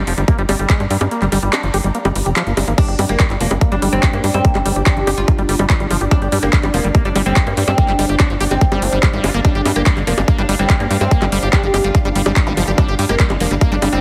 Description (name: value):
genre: psychedelic trance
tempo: 144 BPM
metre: 4/4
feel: straight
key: G minor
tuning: A4 = 441 Hz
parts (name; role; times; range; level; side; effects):
- liquid acid bass; riff; 0.0-14.0 s; F3 to G4; -24 LUFS; equal; chorus, sidechain pumping, tape echo
- tight sequencer bass; bass; 0.0-14.0 s; F1 to G2; -21 LUFS; equal; none
- dark studio string section; texture; 0.0-14.0 s; D4 to Bb5; -33 LUFS; equal; none
- big-room dance drum kit; drums; 0.1-14.0 s; bongos, crash cymbal, handclaps, hi-hat; -23 LUFS; equal; overdrive, small room ambience
- electronic kick drum; drums; 0.3-13.7 s; none; -17 LUFS; equal; overdrive, small room ambience
- oud; melody; 2.8-14.0 s; Bb3 to G4; -24 LUFS; equal; phaser, sidechain pumping, tape echo
- evolving wavetable pad; sustained chords; 4.3-14.0 s; D4; -30 LUFS; equal; none
- zap; sound effects; 12.5-12.6 s; none; -30 LUFS; equal; none
room: light reverb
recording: heavily compressed radio sound, multiband compression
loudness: -15 LUFS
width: mono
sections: 0.0-14.0 A section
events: kick drops out 1.1-2.8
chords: 0.0 G5